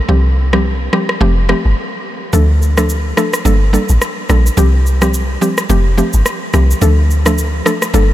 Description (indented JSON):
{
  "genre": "afrobeats",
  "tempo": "107 BPM",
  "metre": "4/4",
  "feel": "swing 58% on 16ths",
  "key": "D minor",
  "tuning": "A4 = 440 Hz",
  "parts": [
    { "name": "mallet-like synth pluck", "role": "accompaniment", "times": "0.0-8.1 s", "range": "F3 to A4", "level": "-16 LUFS", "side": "equal", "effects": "chorus" },
    { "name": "deep log drum bass", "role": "bass", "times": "0.1-8.1 s", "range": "F1 to D2", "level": "-12 LUFS", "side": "equal", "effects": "none" },
    { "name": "electronic rim click and shaker", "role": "drums", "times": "0.5-8.1 s", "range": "none", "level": "-20 LUFS", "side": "equal", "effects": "none" }
  ],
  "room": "light reverb",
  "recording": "none",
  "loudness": "-11 LUFS",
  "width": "side -14 dB against mid",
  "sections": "0.0-8.1 A section",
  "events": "break 0.0-2.3",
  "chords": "0.1 Csus4; 1.2 Fadd9; 2.3 Dm; 3.5 Gmadd9; 4.6 Csus4; 5.7 Fadd9; 6.8 Dm",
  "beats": "| 0.09 0.65 1.21 1.77 | 2.33 2.89 3.45 4.01 | 4.58 5.14 5.70 6.26 | 6.82 7.38 7.94"
}